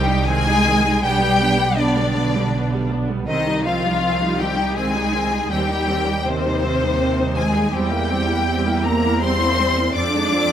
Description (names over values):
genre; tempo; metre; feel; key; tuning
classical, slow romantic movement for string orchestra; 81 BPM; 3/4; rubato; C minor; A4 = 441 Hz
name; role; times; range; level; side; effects
rich symphonic violin section; melody; 0.0-10.5 s; C5 to D6; -22 LUFS; left 4 dB; none
rich symphonic violin section; second line; 0.0-10.5 s; C4 to D5; -25 LUFS; left 3 dB; none
warm symphonic viola section; accompaniment; 0.0-10.5 s; Eb3 to E4; -25 LUFS; right 2 dB; none
rich chamber double bass section; bass; 0.0-10.5 s; B1 to F2; -23 LUFS; right 3 dB; none
rich symphonic cello section; bass; 0.0-10.5 s; C3 to D4; -24 LUFS; right 2 dB; none
room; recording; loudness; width
moderate concert hall reverb, RT60 2.0 s; none; -17 LUFS; side -9 dB against mid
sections
0.0-10.5 A section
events
none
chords
0.0 Cm; 1.0 G/B; 3.3 Cm; 5.5 Cm/Eb; 7.7 C7/E; 9.9 Fm7